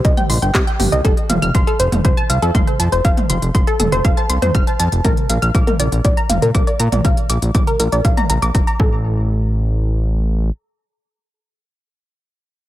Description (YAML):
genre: melodic techno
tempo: 120 BPM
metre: 4/4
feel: straight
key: unclear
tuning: A4 = 435 Hz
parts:
  - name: wide unison pluck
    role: arpeggios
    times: 0.0-9.3 s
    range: G4 to F6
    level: -20 LUFS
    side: equal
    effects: cassette tape, sidechain pumping, digital delay
  - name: fat analog bass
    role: bass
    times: 0.0-10.5 s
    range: F1 to Bb2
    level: -18 LUFS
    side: equal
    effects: tube saturation, sidechain pumping
  - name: electronic kick drum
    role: drums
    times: 0.0-8.9 s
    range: none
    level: -16 LUFS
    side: equal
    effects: none
  - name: techno drum kit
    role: drums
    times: 0.0-8.8 s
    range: handclaps, hi-hat, toms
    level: -22 LUFS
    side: right 1 dB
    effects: none
room: light reverb, digital ambience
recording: none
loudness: -14 LUFS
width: side -14 dB against mid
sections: 0.0-9.0 A section; 9.0-12.7 B section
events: none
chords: 0.0 Cm; 1.0 F; 5.0 Bb; 8.8 N.C.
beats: 0.05 0.55 | 1.05 1.55 2.05 2.55 | 3.05 3.55 4.05 4.55 | 5.05 5.55 6.05 6.55 | 7.05 7.55 8.05 8.55 | 9.05 9.55 10.05